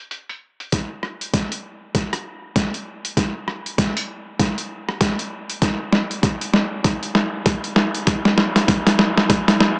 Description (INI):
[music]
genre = glitch hop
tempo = 98 BPM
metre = 4/4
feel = swing 60% on 16ths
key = none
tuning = none
[part]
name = boom bap sampler-style drum kit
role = drums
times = 0.1-9.8 s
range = hi-hat, rim click, snare drum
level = -18 LUFS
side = equal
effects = overdrive, low-pass filter on hats, small room ambience, cassette tape, low-pass filter on snare
[part]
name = electronic kick drum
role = drums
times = 0.7-9.4 s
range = none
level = -21 LUFS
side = equal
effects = overdrive, small room ambience, cassette tape
[sound]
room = wet spring reverb, RT60 2.4 s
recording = home recording on cassette, small speaker sound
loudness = -18 LUFS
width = side -32 dB against mid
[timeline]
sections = 0.7-9.8 A section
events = build-up 0.7-9.8; drum fill 0.7-9.8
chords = none